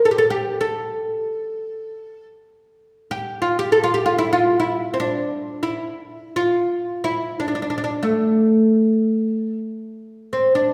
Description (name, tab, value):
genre	Arabic maqam ensemble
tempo	free time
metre	none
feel	none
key	A minor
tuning	A4 = 440 Hz
part	oud	solo	0.0-10.7 s	A3 to A4	-21 LUFS	equal	none
room	wet recital hall reverb, RT60 1.7 s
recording	recorded in a church or concert hall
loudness	-21 LUFS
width	mono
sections	0.0-10.0 A section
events	none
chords	none